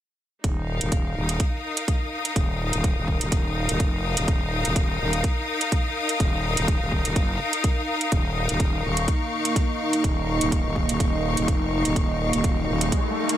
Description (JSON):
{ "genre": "bass house", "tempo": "125 BPM", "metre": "4/4", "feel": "swing 54% on 16ths", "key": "unclear", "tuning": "A4 = 440 Hz", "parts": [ { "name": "growling FM bass", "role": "bass", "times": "0.4-12.9 s", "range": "Eb1 to Gb1", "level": "-27 LUFS", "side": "equal", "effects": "overdrive, sidechain pumping" }, { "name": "electronic hi-hat", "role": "drums", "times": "0.4-13.4 s", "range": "none", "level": "-28 LUFS", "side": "right 4 dB", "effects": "small room reverb" }, { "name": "electronic kick drum", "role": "drums", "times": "0.4-13.0 s", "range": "none", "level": "-24 LUFS", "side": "equal", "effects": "small room reverb" }, { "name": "bright studio string section", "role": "texture", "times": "0.4-13.4 s", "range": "Eb4 to Eb6", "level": "-27 LUFS", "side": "left 2 dB", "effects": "sidechain pumping" }, { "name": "dark analog pad", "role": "sustained chords", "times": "9.1-13.4 s", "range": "Bb3 to Eb5", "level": "-27 LUFS", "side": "right 2 dB", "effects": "chorus, vintage 12-bit sampler grit, sidechain pumping" }, { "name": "riser", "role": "sound effects", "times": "12.5-13.4 s", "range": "none", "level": "-30 LUFS", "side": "left 2 dB", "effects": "none" } ], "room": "light reverb, digital ambience", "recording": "none", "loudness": "-21 LUFS", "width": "side -12 dB against mid", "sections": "0.4-13.4 A section", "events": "riser 12.5-13.4", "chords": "0.4 Eb5" }